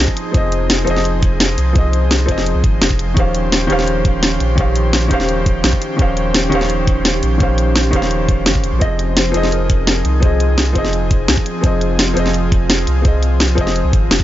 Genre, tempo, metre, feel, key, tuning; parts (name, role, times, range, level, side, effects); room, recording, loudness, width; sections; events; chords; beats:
liquid drum and bass; 170 BPM; 4/4; straight; F minor; A4 = 440 Hz
felt-muted upright piano; accompaniment; 0.0-14.2 s; Eb3 to F5; -19 LUFS; equal; tape echo
airy breathy pad; sustained chords; 0.0-14.2 s; F3 to C5; -23 LUFS; equal; chorus, sidechain pumping
warm sub bass; bass; 0.0-14.2 s; Eb1 to C2; -18 LUFS; equal
electronic kick drum; drums; 0.1-14.2 s; -15 LUFS; equal
drum and bass drum kit; drums; 0.2-14.2 s; hi-hat, snare drum; -18 LUFS; equal
mellow electric guitar; melody; 8.8-10.9 s; Ab4 to Eb5; -26 LUFS; left 3 dB; spring reverb, tape echo
little or no reverb; nothing above 7.5 kHz; -13 LUFS; side -13 dB against mid
0.0-14.2 A section
0.0 Fm7; 3.2 Eb13; 8.8 Fm7
| 0.34 0.70 1.05 1.40 | 1.75 2.11 2.46 2.81 | 3.17 3.52 3.87 4.23 | 4.58 4.93 5.29 5.64 | 5.99 6.34 6.70 7.05 | 7.40 7.75 8.11 8.46 | 8.81 9.17 9.52 9.87 | 10.23 10.58 10.93 11.29 | 11.64 11.99 12.34 12.70 | 13.05 13.40 13.76 14.11